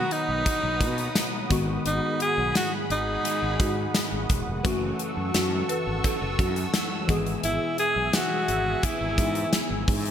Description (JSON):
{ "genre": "1980s-style pop", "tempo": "86 BPM", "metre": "4/4", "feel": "straight", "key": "unclear", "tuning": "A4 = 438 Hz", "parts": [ { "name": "bright alto saxophone", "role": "melody", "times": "0.0-9.9 s", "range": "D#4 to G#4", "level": "-27 LUFS", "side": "equal", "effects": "ping-pong delay" }, { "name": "crunchy overdriven guitar", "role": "accompaniment", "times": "0.0-10.1 s", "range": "E2 to B3", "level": "-36 LUFS", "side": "right 1 dB", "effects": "ensemble chorus" }, { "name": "glassy digital keys", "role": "accompaniment", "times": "0.0-10.1 s", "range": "D#3 to G#4", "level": "-32 LUFS", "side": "left 2 dB", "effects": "chorus" }, { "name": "sweeping resonant pad", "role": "sustained chords", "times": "0.0-10.1 s", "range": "G#4 to E6", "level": "-33 LUFS", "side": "right 1 dB", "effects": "chorus" }, { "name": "fretless electric bass", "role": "bass", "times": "0.0-10.1 s", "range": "E1 to B2", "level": "-30 LUFS", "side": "equal", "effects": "none" }, { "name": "gated 80s drum kit", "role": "drums", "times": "0.1-10.1 s", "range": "hi-hat, kick drum, snare drum, tambourine", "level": "-27 LUFS", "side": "equal", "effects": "gated reverb" }, { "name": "folk marimba with medium hard mallets", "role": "second line", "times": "3.6-7.2 s", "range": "F#4 to B4", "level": "-34 LUFS", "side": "right 2 dB", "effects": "ping-pong delay" } ], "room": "light reverb, studio ambience", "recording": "none", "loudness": "-23 LUFS", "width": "side -9 dB against mid", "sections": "0.0-10.1 A section", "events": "none", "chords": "0.0 Bmaj7; 1.5 G#m7; 4.6 F#m7; 7.1 E/G#" }